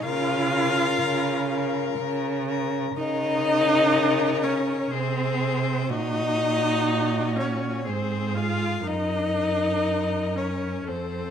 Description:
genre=classical, slow romantic movement for string quartet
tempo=61 BPM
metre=3/4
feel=rubato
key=Bb minor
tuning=A4 = 440 Hz
part: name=rich violin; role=melody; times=0.0-11.3 s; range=Gb4 to Bb4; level=-31 LUFS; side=left 11 dB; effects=none
part: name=rich violin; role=second line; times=0.0-11.3 s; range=C5 to F5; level=-28 LUFS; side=left 5 dB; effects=none
part: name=warm viola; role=accompaniment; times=0.0-11.3 s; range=C4 to F4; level=-26 LUFS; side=right 1 dB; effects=none
part: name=rich cello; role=bass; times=0.0-11.3 s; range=F2 to Db3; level=-27 LUFS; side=right 4 dB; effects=none
room=moderate scoring stage reverb, RT60 2.0 s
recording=none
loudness=-22 LUFS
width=side -8 dB against mid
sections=0.0-11.3 A section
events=none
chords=0.0 Bbm/Db; 4.9 Ab/C; 5.9 Gb/Bb; 7.9 Fm/Ab; 8.8 Ebm/Gb

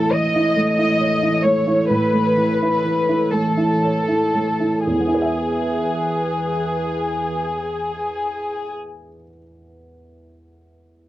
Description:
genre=neoclassical piano and strings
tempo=38-46 BPM (dotted quarters)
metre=6/8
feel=rubato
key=E major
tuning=A4 = 440 Hz
part: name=warm chamber violin section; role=melody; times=0.0-8.7 s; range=G#4 to D#5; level=-20 LUFS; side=left 1 dB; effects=cassette tape
part: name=warm upright piano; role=accompaniment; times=0.0-11.1 s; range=E2 to E5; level=-21 LUFS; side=right 2 dB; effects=none
part: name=warbly tape-like pad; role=sustained chords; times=0.0-8.7 s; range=E3 to C#5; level=-27 LUFS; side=equal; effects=chorus, built-in reverb, phaser
room=light reverb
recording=home recording on cassette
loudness=-17 LUFS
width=side -14 dB against mid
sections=0.0-4.9 A section; 4.9-8.0 B section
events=slowing down 0.0-4.9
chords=0.0 A; 4.9 E

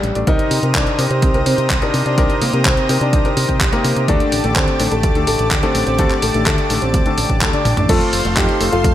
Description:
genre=italo disco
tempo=126 BPM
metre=4/4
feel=straight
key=C dorian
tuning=A4 = 441 Hz
part: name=warm grand piano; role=melody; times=0.0-8.9 s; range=G3 to A4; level=-21 LUFS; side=left 1 dB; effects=tape echo
part: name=fingered electric bass with an envelope filter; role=bass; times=0.0-8.9 s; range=F1 to C3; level=-20 LUFS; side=right 1 dB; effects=none
part: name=clean 12-bit digital drum machine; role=drums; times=0.0-8.9 s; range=crash cymbal, handclaps, hi-hat, toms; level=-21 LUFS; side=equal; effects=small room reverb, gated reverb
part: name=warm grand piano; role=stabs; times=0.2-8.9 s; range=C3 to D5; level=-22 LUFS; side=left 3 dB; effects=none
part: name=lush unison pad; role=sustained chords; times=0.3-8.9 s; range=G4 to Eb6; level=-23 LUFS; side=right 1 dB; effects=chorus
part: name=electronic kick drum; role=drums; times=0.3-8.9 s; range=none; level=-19 LUFS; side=right 1 dB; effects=small room reverb
room=light reverb, digital ambience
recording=none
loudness=-13 LUFS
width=side -12 dB against mid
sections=0.0-7.9 A section; 7.9-8.9 B section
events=drum fill 7.4-7.9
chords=0.3 Cm7; 4.1 Gsus2; 7.9 F

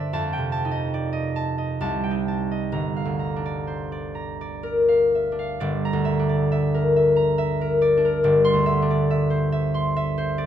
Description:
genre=classical, solo harp piece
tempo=60-74 BPM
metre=3/4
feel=rubato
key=G dorian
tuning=A4 = 442 Hz
part: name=concert harp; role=solo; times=0.0-10.5 s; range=G1 to C6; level=-20 LUFS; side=equal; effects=none
room=light reverb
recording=close, detailed microphones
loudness=-20 LUFS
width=side -10 dB against mid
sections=0.0-5.6 A section; 5.6-10.5 B section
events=none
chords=0.1 F9; 1.8 Cm6; 2.7 Gm7; 5.6 Gm6; 8.3 Dsus2/G

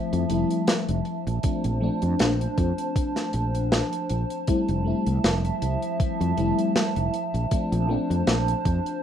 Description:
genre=vaporwave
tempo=79 BPM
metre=4/4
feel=swing 54% on 16ths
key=unclear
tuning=A4 = 439 Hz
part: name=FM electric piano with soft pad layer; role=accompaniment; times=0.0-9.0 s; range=F3 to E4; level=-28 LUFS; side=left 1 dB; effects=tremolo, analog chorus, tape echo
part: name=warbly tape-like pad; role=sustained chords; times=0.0-9.0 s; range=F3 to A5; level=-28 LUFS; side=equal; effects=chorus, built-in reverb
part: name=fretless electric bass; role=bass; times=0.1-8.8 s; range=F1 to F2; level=-25 LUFS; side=equal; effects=tube saturation, wide subtle chorus
part: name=tight metal drum kit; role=drums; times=0.1-9.0 s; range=hi-hat, snare drum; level=-26 LUFS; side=equal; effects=none
part: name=electronic kick drum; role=drums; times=1.4-8.8 s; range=none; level=-25 LUFS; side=equal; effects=overdrive
room=moderate studio reverb, RT60 0.6 s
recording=rough home demo mix, cassette tape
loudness=-22 LUFS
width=side -9 dB against mid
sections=0.0-9.0 A section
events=none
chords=0.0 Fmaj7; 1.1 Bbmaj9; 4.5 Fmaj7; 7.1 Bbmaj9

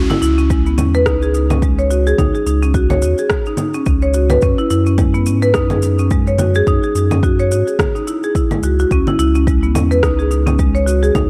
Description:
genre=organic downtempo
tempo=107 BPM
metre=4/4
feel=swing 58% on 16ths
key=C# minor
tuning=A4 = 439 Hz
part: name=marimba with medium hard mallets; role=arpeggios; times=0.0-11.3 s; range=G#3 to C#5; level=-19 LUFS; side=equal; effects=digital delay
part: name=warm sub bass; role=bass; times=0.0-11.3 s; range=C#2 to G#2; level=-18 LUFS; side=equal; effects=sidechain pumping
part: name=electronic congas, shaker and rim click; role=drums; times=0.1-11.3 s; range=none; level=-24 LUFS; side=equal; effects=overdrive
part: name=electronic kick drum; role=drums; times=0.5-11.3 s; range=none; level=-20 LUFS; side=equal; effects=none
room=digital ambience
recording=none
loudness=-15 LUFS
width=mono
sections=0.0-11.3 A section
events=none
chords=0.0 C#madd9

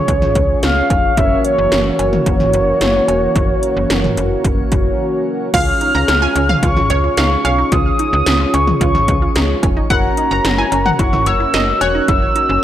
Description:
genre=synth-pop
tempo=110 BPM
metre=4/4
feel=straight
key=unclear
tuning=A4 = 442 Hz
part: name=mellow horn-like synth lead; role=melody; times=0.0-12.6 s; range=Db5 to Gb6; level=-17 LUFS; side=equal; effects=chorus, analog delay, shimmer reverb
part: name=mellow synth brass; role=accompaniment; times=0.0-12.6 s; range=Db4 to Db5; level=-20 LUFS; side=equal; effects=chorus, shimmer reverb
part: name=slap-like FM bass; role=bass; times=0.1-12.6 s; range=Fb1 to Db2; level=-19 LUFS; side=equal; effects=none
part: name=80s electronic pad drums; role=drums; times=0.1-12.5 s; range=cowbell, crash cymbal, hi-hat, kick drum, snare drum, toms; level=-18 LUFS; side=equal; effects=gated reverb on snare and toms
part: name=warm analog pad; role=sustained chords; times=1.2-5.5 s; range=Fb3 to Gb4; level=-23 LUFS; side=right 1 dB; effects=chorus, shimmer reverb
part: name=analog pluck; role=second line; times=5.5-11.9 s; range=Db5 to Bb5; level=-21 LUFS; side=equal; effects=chorus, analog delay, shimmer reverb
part: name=resonant blip pluck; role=arpeggios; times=5.5-12.6 s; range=Db4 to F4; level=-24 LUFS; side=right 3 dB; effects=chorus, shimmer reverb
room=light reverb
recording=none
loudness=-12 LUFS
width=side -11 dB against mid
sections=0.0-5.5 A section; 5.5-12.6 B section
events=break 5.0-5.5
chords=0.0 Db; 1.2 Gb7; 5.5 Db; 9.9 Gb7

